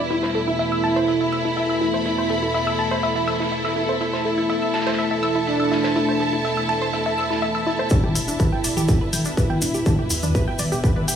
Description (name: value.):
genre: melodic techno.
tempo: 123 BPM.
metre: 4/4.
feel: straight.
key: unclear.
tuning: A4 = 441 Hz.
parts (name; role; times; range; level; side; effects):
lush unison pad; sustained chords; 0.0-11.2 s; E2 to A4; -29 LUFS; left 1 dB; chorus, sidechain pumping.
wide unison pluck; arpeggios; 0.0-11.1 s; D4 to E6; -26 LUFS; equal; sidechain pumping, tape echo.
analog drone; drone; 0.0-11.2 s; E2 to B2; -33 LUFS; left 1 dB; chorus, sidechain pumping.
rich symphonic string section; texture; 0.0-11.2 s; E4 to B5; -25 LUFS; equal; sidechain pumping.
expressive synth lead; melody; 0.1-10.3 s; D4 to E4; -26 LUFS; right 1 dB; analog chorus, sidechain pumping, tape echo.
loose indie drum kit; drums; 0.1-7.8 s; hi-hat, snare drum; -35 LUFS; right 2 dB; none.
electronic kick drum; drums; 7.9-10.9 s; none; -20 LUFS; equal; distortion.
tube shaker; percussion; 7.9-11.2 s; none; -29 LUFS; left 2 dB; none.
round analog bass; bass; 8.0-11.2 s; E1 to E2; -30 LUFS; equal; sidechain pumping.
techno drum kit; drums; 8.0-11.2 s; hi-hat, toms; -25 LUFS; left 1 dB; overdrive, sidechain pumping on toms, low-pass filter on toms, sidechain pumping on hats, low-pass filter on hats.
room: moderate huge ambient reverb, RT60 6.7 s.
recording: studio reverb.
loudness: -19 LUFS.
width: side -8 dB against mid.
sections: 0.0-7.9 A section; 7.9-11.2 B section.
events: filter sweep on synth arpeggio sound 0.0-7.9; build-up 7.9-11.2.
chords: 0.1 A5/E; 7.9 Em7.